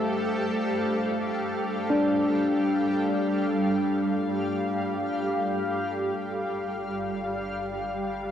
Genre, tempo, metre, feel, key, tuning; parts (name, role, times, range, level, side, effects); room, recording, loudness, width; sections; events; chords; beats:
ambient; free time; A4 = 438 Hz
granular cloud pad; sustained chords; 0.0-8.3 s; G3 to F5; -27 LUFS; right 1 dB; built-in reverb, cassette tape
barky tine electric piano; arpeggios; 0.0-6.3 s; A3 to C5; -27 LUFS; left 2 dB; cassette tape, tape echo
organ-like drone; drone; 1.0-8.3 s; G3 to D4; -48 LUFS; left 2 dB
warm sub bass; bass; 6.2-8.3 s; G1; -50 LUFS; equal
wet booth ambience, RT60 0.2 s; home recording on cassette; -24 LUFS; side -9 dB against mid
0.0-6.2 A section; 6.2-8.3 B section
0.0 Csus24/G
free time